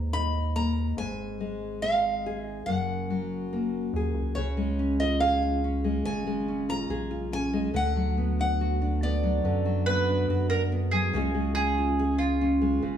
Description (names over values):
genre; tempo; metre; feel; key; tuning
folk; 71 BPM; 4/4; straight; unclear; A4 = 440 Hz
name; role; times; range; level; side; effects
picked old ladder-braced acoustic guitar; melody; 0.0-10.7 s; C#5 to B5; -30 LUFS; right 1 dB; none
nylon-string guitar; accompaniment; 0.0-13.0 s; F#2 to Ab4; -28 LUFS; left 2 dB; none
rubbery square bass; bass; 0.0-13.0 s; F#1 to F#2; -30 LUFS; right 1 dB; none
mandolin; second line; 9.9-13.0 s; E#4 to B4; -28 LUFS; right 4 dB; none
room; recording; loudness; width
moderate large studio reverb, RT60 1.2 s; heard from further back in the room, small room ambience; -25 LUFS; side -9 dB against mid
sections
0.0-4.4 A section; 4.4-13.0 B section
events
none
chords
0.0 G#madd9; 1.0 Fm7/Ab; 2.7 F#add9; 4.4 C#; 7.7 Bm/D; 11.1 C#